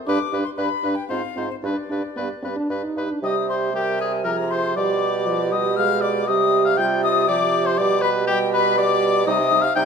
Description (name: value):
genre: quick classical-period movement for wind quintet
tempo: 119 BPM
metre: 3/4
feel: rubato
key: C minor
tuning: A4 = 440 Hz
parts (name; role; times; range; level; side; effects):
- silver concert flute; melody; 0.1-9.8 s; C5 to G6; -24 LUFS; left 9 dB; none
- warm oboe; second line; 0.1-9.8 s; G4 to G5; -25 LUFS; left 4 dB; none
- mellow clarinet; accompaniment; 0.1-9.8 s; Eb4 to Bb4; -27 LUFS; right 10 dB; none
- warm French horn; accompaniment; 0.1-9.8 s; F3 to Eb4; -26 LUFS; right 1 dB; none
- warm bassoon; bass; 0.1-9.8 s; G2 to C3; -25 LUFS; right 4 dB; none
room: wet recital hall reverb, RT60 1.6 s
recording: faint mains hum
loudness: -18 LUFS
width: side -6 dB against mid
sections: 0.0-3.2 A section; 3.2-9.8 B section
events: none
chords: 0.1 G; 1.1 Fm/Ab; 1.6 G; 3.2 C5; 4.8 G/B; 6.3 C5; 7.8 G/B; 9.3 Cm